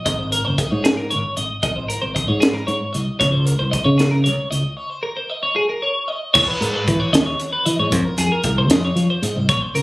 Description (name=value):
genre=math rock and midwest emo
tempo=76 BPM (dotted quarters)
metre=6/8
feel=straight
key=unclear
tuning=A4 = 442 Hz
part: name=twelve-string electric guitar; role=arpeggios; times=0.0-9.8 s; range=Ab4 to Eb5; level=-20 LUFS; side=equal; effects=analog chorus
part: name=modern bright fingered electric bass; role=bass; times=0.1-9.8 s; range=Gb1 to F3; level=-20 LUFS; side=equal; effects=none
part: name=crisp fusion drum kit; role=drums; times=0.1-9.8 s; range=crash cymbal, hi-hat, kick drum, snare drum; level=-21 LUFS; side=equal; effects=none
room=light reverb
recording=recorded on a phone in the room, club reverb, compression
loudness=-16 LUFS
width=side -21 dB against mid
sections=0.0-6.3 A section; 6.3-9.8 B section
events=break 4.8-6.3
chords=0.1 Abadd9; 3.2 Db5; 4.8 Abadd11 (rootless); 6.3 Emaj7; 7.9 Fm7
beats=| 0.06 0.85 | 1.63 2.42 | 3.21 3.99 | 4.78 5.56 | 6.35 7.13 | 7.91 8.70 | 9.48